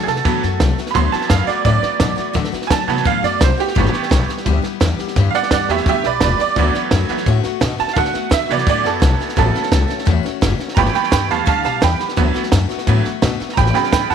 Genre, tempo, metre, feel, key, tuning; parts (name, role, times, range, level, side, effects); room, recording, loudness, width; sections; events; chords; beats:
rockabilly; 171 BPM; 4/4; straight; D major; A4 = 440 Hz
picked steel-string acoustic guitar; accompaniment; 0.0-14.1 s; G2 to G4; -24 LUFS; left 16 dB
tack piano; accompaniment; 0.0-14.1 s; C#3 to C6; -18 LUFS; right 11 dB
upright bass; bass; 0.0-14.1 s; E1 to D3; -18 LUFS; left 2 dB
compact cocktail drum kit; drums; 0.1-14.1 s; hi-hat, kick drum, snare drum; -20 LUFS; right 2 dB
light reverb, studio reverb; 1960s-style stereo with parts hard left and right; -14 LUFS; side -7 dB against mid
0.0-14.1 A section
honky-tonk piano solo 0.0-14.1
0.0 D6; 3.8 G6; 6.6 D6; 9.4 A6; 10.8 G6; 12.2 D6; 13.6 A6
0.25 0.60 | 0.95 1.30 1.65 2.00 | 2.35 2.70 3.05 3.40 | 3.75 4.11 4.46 4.81 | 5.16 5.51 5.86 6.21 | 6.56 6.91 7.26 7.62 | 7.97 8.32 8.67 9.02 | 9.37 9.72 10.07 10.43 | 10.78 11.13 11.48 11.83 | 12.18 12.53 12.88 13.23 | 13.58 13.93